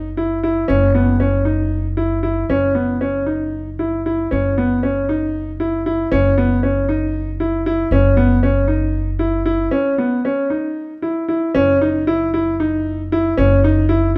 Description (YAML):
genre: contemporary instrumental, chamber music in an uneven meter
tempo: 233 BPM (eighths)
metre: 7/8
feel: straight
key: unclear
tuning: A4 = 440 Hz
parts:
  - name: clear grand piano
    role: arpeggios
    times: 0.0-14.2 s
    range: B3 to E4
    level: -19 LUFS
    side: equal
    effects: none
  - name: upright bass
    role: bass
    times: 0.0-14.2 s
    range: F#1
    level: -23 LUFS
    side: equal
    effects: none
room: moderate recital hall reverb, RT60 1.5 s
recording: none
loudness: -18 LUFS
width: mono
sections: 0.0-11.6 A section; 11.6-14.2 B section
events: break 9.7-11.6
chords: 0.0 B/F# (rootless); 9.7 Badd9; 11.6 F#5